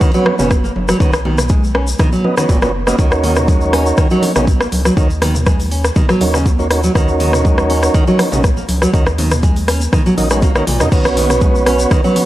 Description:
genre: afro house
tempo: 121 BPM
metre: 4/4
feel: straight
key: Eb minor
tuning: A4 = 439 Hz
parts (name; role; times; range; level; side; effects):
- nylon-string guitar; arpeggios; 0.0-12.2 s; Bb2 to Eb4; -19 LUFS; equal; sidechain pumping, tape echo
- mellow tonewheel organ; stabs; 0.0-12.3 s; B3 to Eb5; -18 LUFS; right 2 dB; overdrive, fast rotary speaker, sidechain pumping, tape echo
- electronic kick drum; drums; 0.0-12.0 s; none; -14 LUFS; equal; studio reverb
- tube shaker; percussion; 0.0-12.1 s; none; -29 LUFS; left 3 dB; none
- deep house drum kit; drums; 0.3-12.3 s; crash cymbal, hi-hat, rim click, toms; -19 LUFS; left 1 dB; studio reverb
- congas; percussion; 0.3-12.3 s; none; -23 LUFS; right 1 dB; none
- warm sub bass; bass; 0.4-11.9 s; F#1 to Gb2; -19 LUFS; equal; sidechain pumping
room: light reverb, digital ambience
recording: dry, gritty hardware recording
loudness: -11 LUFS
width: side -15 dB against mid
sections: 0.0-12.3 A section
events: drum fill 10.7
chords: 0.0 Bsus2; 3.0 Ebm7; 10.9 Bsus2

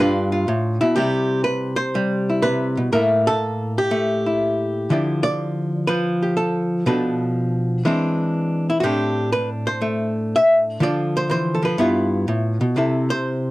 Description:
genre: solo jazz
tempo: 122 BPM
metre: 4/4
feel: swing 68% on 8ths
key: C major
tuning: A4 = 440 Hz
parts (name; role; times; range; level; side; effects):
- archtop guitar, miked and amplified; solo; 0.0-13.5 s; G2 to E5; -18 LUFS; equal; none
room: light reverb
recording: dry, close 1970s-style studio recording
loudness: -18 LUFS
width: side -18 dB against mid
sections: 1.0-13.5 A section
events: none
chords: 0.0 G7; 1.0 C; 2.9 A5; 4.9 Dmadd9; 6.9 Bm7b5; 7.8 E7b13; 8.8 Am7; 10.8 Dm; 11.8 G13; 12.8 C6

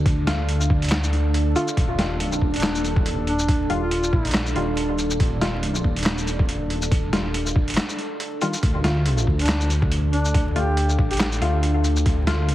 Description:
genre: deep dubstep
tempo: 140 BPM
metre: 4/4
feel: swing 56% on 16ths, half-time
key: unclear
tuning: A4 = 442 Hz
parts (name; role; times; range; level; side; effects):
- deep dark ambient pad; sustained chords; 0.0-12.5 s; D4 to A4; -29 LUFS; right 1 dB; chorus, built-in reverb
- dark detuned saw bass; bass; 0.0-12.5 s; Eb1 to D2; -23 LUFS; equal; none
- electronic kick drum; drums; 0.1-12.2 s; none; -22 LUFS; equal; none
- trip hop sampler-style drum kit; drums; 0.1-12.5 s; handclaps, hi-hat, shaker, snare drum; -26 LUFS; equal; none
- filtered dub chord stab; stabs; 0.3-12.5 s; D3 to F4; -28 LUFS; left 2 dB; analog chorus, dub echo
- warm duduk; melody; 2.5-4.4, 9.4-11.3 s; D4 to G4; -28 LUFS; left 1 dB; dub echo
room: light reverb, digital ambience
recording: heavily compressed radio sound, vinyl crackle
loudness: -19 LUFS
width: side -14 dB against mid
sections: 0.0-12.5 A section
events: break 7.8-8.6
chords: 0.0 Dm; 1.8 Ebadd9; 8.6 Dm

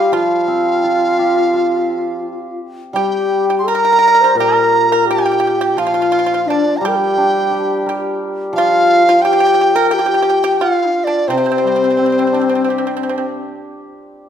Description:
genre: chinese traditional, Chinese chamber ensemble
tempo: 86 BPM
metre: 4/4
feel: rubato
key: unclear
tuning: A4 = 438 Hz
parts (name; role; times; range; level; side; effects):
- mellow large dizi; melody; 0.0-13.4 s; C5 to C6; -15 LUFS; right 2 dB; none
- low xiao; second line; 0.0-13.4 s; C4 to C5; -18 LUFS; left 4 dB; none
- pipa; second line; 0.0-13.2 s; C4 to Bb4; -22 LUFS; right 6 dB; none
- hammered dulcimer; accompaniment; 0.0-14.1 s; Bb2 to C5; -21 LUFS; equal; none
room: moderate scoring stage reverb, RT60 1.9 s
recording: minimal, uncompressed stereo recording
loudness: -12 LUFS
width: side -9 dB against mid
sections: 0.0-14.1 A section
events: none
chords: none

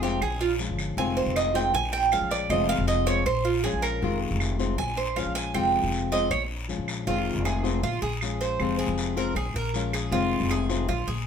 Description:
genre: latin, Cuban son and guajira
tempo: 158 BPM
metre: 4/4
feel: straight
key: F minor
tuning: A4 = 439 Hz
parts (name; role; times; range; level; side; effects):
- nylon-string guitar; accompaniment; 0.0-10.9 s; C3 to F4; -29 LUFS; left 6 dB; none
- Cuban tres; arpeggios; 0.0-11.3 s; F4 to Ab5; -27 LUFS; right 5 dB; none
- upright bass; bass; 0.0-11.3 s; F1 to Bb1; -30 LUFS; equal; none
- guiro; percussion; 0.0-11.3 s; none; -38 LUFS; left 5 dB; none
- claves; percussion; 0.2-10.7 s; none; -36 LUFS; right 5 dB; none
room: moderate studio reverb, RT60 0.8 s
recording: minimal, uncompressed stereo recording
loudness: -24 LUFS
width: side -7 dB against mid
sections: 0.0-7.1 A section; 7.1-11.3 B section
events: Cuban tres solo 0.0-7.1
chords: 0.2 Bbm7; 1.0 Fm7; 1.7 Bbm7; 2.5 Fm; 3.3 Bbm7; 4.0 Fm7; 4.8 Bbm7; 5.5 Fm; 6.3 Bbm7; 7.1 Fm7; 7.8 Bbm7; 8.6 Fm; 9.4 Bbm7; 10.1 Fm7

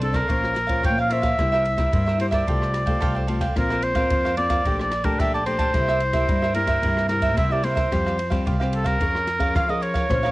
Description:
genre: samba and choro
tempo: 110 BPM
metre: 4/4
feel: straight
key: F major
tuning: A4 = 440 Hz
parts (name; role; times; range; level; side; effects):
- warm oboe; melody; 0.0-10.3 s; A4 to G5; -24 LUFS; equal; cassette tape, analog delay
- cavaquinho; accompaniment; 0.0-10.3 s; E4 to A5; -28 LUFS; right 3 dB; cassette tape
- nylon-string guitar; accompaniment; 0.0-10.3 s; Bb2 to C5; -28 LUFS; left 2 dB; cassette tape
- upright bass; bass; 0.0-10.3 s; Bb1 to F3; -26 LUFS; equal; none
- open jazz drum kit; drums; 0.0-10.3 s; kick drum, ride cymbal, rim click; -26 LUFS; equal; cassette tape
room: light reverb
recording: home recording on cassette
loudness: -19 LUFS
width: side -19 dB against mid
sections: 0.0-10.3 A section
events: none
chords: 0.3 Bbmadd9; 1.4 C7; 2.5 Fadd9/C; 3.6 Bbsus2; 4.7 Gmadd9/Bb; 5.7 C7; 7.9 Fsus2; 9.0 Db6/F

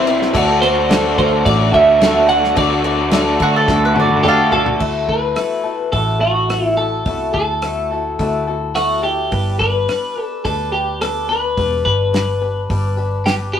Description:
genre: folk rock and heartland rock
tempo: 107 BPM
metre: 4/4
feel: straight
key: D mixolydian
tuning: A4 = 439 Hz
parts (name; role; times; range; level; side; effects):
- twelve-string electric guitar; melody; 0.0-13.6 s; F#4 to F#5; -18 LUFS; right 1 dB; none
- bright reed electric piano; accompaniment; 0.0-4.8 s; C4 to E5; -25 LUFS; right 3 dB; fast tremolo
- picked swing-style acoustic guitar; accompaniment; 0.0-13.6 s; D3 to C5; -21 LUFS; left 4 dB; none
- bright tonewheel organ; sustained chords; 0.0-4.8 s; F#4 to D6; -27 LUFS; left 1 dB; slow rotary speaker, chorus vibrato
- raw garage guitar; riff; 0.0-4.8 s; C3 to F#4; -19 LUFS; equal; overdrive
- hollow-body short-scale picked electric bass; bass; 0.0-13.6 s; E1 to D3; -22 LUFS; equal; none
- damped 70s drum kit; drums; 0.1-13.4 s; crash cymbal, hi-hat, kick drum, rim click, snare drum, toms; -22 LUFS; equal; none
- mandolin; second line; 3.4-4.7 s; F#4 to F5; -17 LUFS; right 3 dB; none
room: moderate studio reverb, RT60 0.5 s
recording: rough rehearsal-room recording, tube saturation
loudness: -14 LUFS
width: side -9 dB against mid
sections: 0.0-4.8 A section; 4.8-13.6 B section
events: drum fill 3.7-4.8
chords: 0.3 D; 4.8 Dadd9; 9.3 G

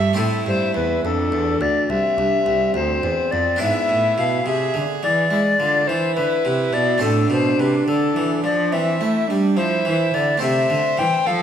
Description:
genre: classical, baroque-style sonata movement with continuo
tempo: 70 BPM (dotted quarters)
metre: 12/8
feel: straight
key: A minor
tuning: A4 = 440 Hz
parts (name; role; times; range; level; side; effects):
- warm violin; second line; 0.0-11.4 s; C4 to E5; -24 LUFS; right 4 dB; none
- harpsichord; accompaniment; 0.0-11.4 s; C2 to A4; -25 LUFS; right 1 dB; none
- rich cello; bass; 0.0-11.4 s; C2 to A3; -24 LUFS; right 2 dB; none
- bright tenor recorder; melody; 0.2-11.4 s; A4 to G5; -20 LUFS; left 4 dB; none
room: wet recital hall reverb, RT60 1.4 s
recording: faint mains hum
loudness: -17 LUFS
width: side -9 dB against mid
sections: 0.2-11.4 A section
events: none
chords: 0.2 Am; 3.6 E7/G#; 7.0 Am; 10.4 Am/C

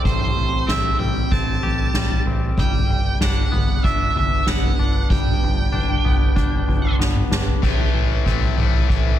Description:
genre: post-rock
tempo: 95 BPM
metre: 4/4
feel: straight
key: A dorian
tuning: A4 = 438 Hz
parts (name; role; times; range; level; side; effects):
- evolving wavetable pad; sustained chords; 0.0-9.2 s; C4 to G5; -31 LUFS; left 1 dB; chorus, built-in reverb
- twangy electric guitar; arpeggios; 0.0-9.2 s; A2 to G4; -30 LUFS; left 4 dB; tape echo
- octave-fuzz lead guitar; melody; 0.1-7.0 s; C5 to A5; -25 LUFS; right 3 dB; distortion, tape echo
- growling picked electric bass; bass; 0.1-9.1 s; G1 to A1; -25 LUFS; equal; overdrive
- soft-mallet drum kit; drums; 0.1-9.0 s; crash cymbal, kick drum, snare drum, toms; -19 LUFS; equal; none
- distorted electric guitar; riff; 7.6-9.2 s; A2 to A3; -24 LUFS; left 13 dB; distortion
room: small room ambience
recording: none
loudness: -17 LUFS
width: side -11 dB against mid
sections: 0.0-7.6 A section; 7.6-9.2 B section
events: drum fill 7.0-7.6; build-up 7.6-9.2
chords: 0.0 Am7; 2.6 Gmaj7; 7.6 Am7

